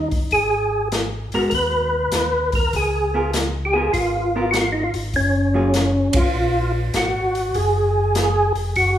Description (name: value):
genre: soul jazz organ trio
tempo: 99 BPM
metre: 4/4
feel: swing 67% on 8ths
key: F# major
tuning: A4 = 440 Hz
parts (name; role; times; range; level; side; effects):
- percussive tonewheel organ; melody; 0.0-9.0 s; C#4 to B4; -19 LUFS; equal; slow rotary speaker, chorus vibrato
- vintage hollow-body jazz guitar; accompaniment; 0.0-5.7 s; F#3 to A#4; -26 LUFS; equal; none
- mellow tonewheel organ; bass; 0.0-9.0 s; E#1 to D#2; -24 LUFS; equal; chorus vibrato, slow rotary speaker
- open jazz drum kit; drums; 0.1-9.0 s; hi-hat, kick drum, ride cymbal, snare drum; -24 LUFS; left 1 dB; none
room: wet recital hall reverb, RT60 1.4 s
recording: recorded in a church or concert hall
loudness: -17 LUFS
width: side -11 dB against mid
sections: 0.0-9.0 A section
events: band accent 6.0-6.4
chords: 0.3 G#madd9; 2.7 C#6; 5.1 F#maj9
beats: | 0.32 0.92 1.52 2.13 | 2.73 3.33 3.94 4.54 | 5.14 5.75 6.35 6.96 | 7.56 8.16 8.77